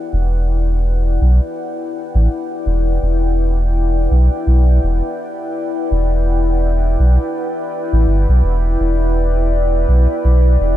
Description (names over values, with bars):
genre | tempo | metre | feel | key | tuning
ambient dub | 83 BPM | 4/4 | swing 58% on 16ths | E minor | A4 = 440 Hz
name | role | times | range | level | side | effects
deep dark ambient pad | sustained chords | 0.0-10.8 s | E4 to G5 | -20 LUFS | left 2 dB | chorus, built-in reverb
warm sub bass | bass | 0.1-10.8 s | E1 to B1 | -13 LUFS | equal | none
room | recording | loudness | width
digital ambience | dark, warm production | -14 LUFS | side -13 dB against mid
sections
0.0-10.8 A section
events
none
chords
0.0 Em7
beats
| 0.13 0.85 1.57 2.30 | 3.02 3.74 4.46 5.19 | 5.91 6.63 7.36 8.08 | 8.80 9.53 10.25